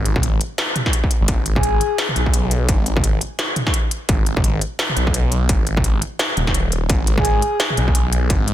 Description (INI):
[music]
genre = half-time drum and bass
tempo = 171 BPM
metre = 4/4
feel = swing 59% on 16ths, half-time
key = G# minor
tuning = A4 = 440 Hz
[part]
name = phased detuned saw bass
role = bass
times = 0.0-8.5 s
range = D#1 to B1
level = -19 LUFS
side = equal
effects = phaser
[part]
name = industrial drum kit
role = drums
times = 0.1-8.5 s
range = hi-hat, snare drum, toms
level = -22 LUFS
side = equal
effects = none
[part]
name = electronic kick drum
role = drums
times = 0.2-8.4 s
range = none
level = -19 LUFS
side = equal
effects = distortion
[part]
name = breathy flute-like synth lead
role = melody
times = 1.6-2.0, 7.2-7.7 s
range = G#4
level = -23 LUFS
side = left 1 dB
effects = lush chorus, digital delay
[sound]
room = digital ambience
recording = dense, heavily limited modern master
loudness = -16 LUFS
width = side -12 dB against mid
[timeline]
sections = 0.0-8.5 A section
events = none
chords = 0.0 G#5